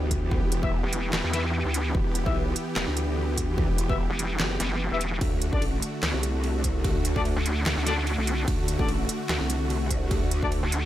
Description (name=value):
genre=heavy wobble dubstep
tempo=147 BPM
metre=4/4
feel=swing 55% on 16ths, half-time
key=E minor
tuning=A4 = 440 Hz
part: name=supersaw chords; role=sustained chords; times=0.0-10.9 s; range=D3 to G4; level=-31 LUFS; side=equal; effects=sidechain pumping
part: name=growl bass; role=bass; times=0.0-10.6 s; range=E1 to D2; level=-27 LUFS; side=equal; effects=chorus, overdrive
part: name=dubstep drum kit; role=drums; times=0.1-10.8 s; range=handclaps, hi-hat, ride cymbal, snare drum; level=-31 LUFS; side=right 1 dB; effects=none
part: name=electronic kick drum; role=drums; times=0.1-10.5 s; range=none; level=-28 LUFS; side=equal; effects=none
part: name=warm brass ensemble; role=stabs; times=0.6-10.5 s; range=D4 to E5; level=-33 LUFS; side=left 5 dB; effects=ping-pong delay
part: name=vowel-sweep wobble bass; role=bass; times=0.8-10.9 s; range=E1 to E2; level=-26 LUFS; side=equal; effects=chorus, overdrive
room=little or no reverb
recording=none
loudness=-24 LUFS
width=side -13 dB against mid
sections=0.0-10.9 A section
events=none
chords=0.0 Em; 5.2 D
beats=| 0.31 0.72 1.13 1.54 | 1.95 2.35 2.76 3.17 | 3.58 3.99 4.40 4.80 | 5.21 5.62 6.03 6.44 | 6.84 7.25 7.66 8.07 | 8.48 8.88 9.29 9.70 | 10.11 10.52